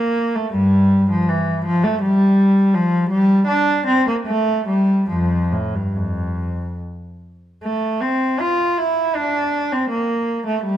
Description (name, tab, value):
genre	classical, baroque-style suite movement for unaccompanied cello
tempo	68-85 BPM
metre	3/4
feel	rubato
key	F major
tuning	A4 = 439 Hz
part	warm cello	solo	0.0-10.8 s	F2 to F4	-16 LUFS	equal	none
room	moderate recital hall reverb, RT60 1.6 s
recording	close, detailed microphones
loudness	-16 LUFS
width	side -11 dB against mid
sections	0.0-7.6 A section; 7.6-10.8 B section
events	none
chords	none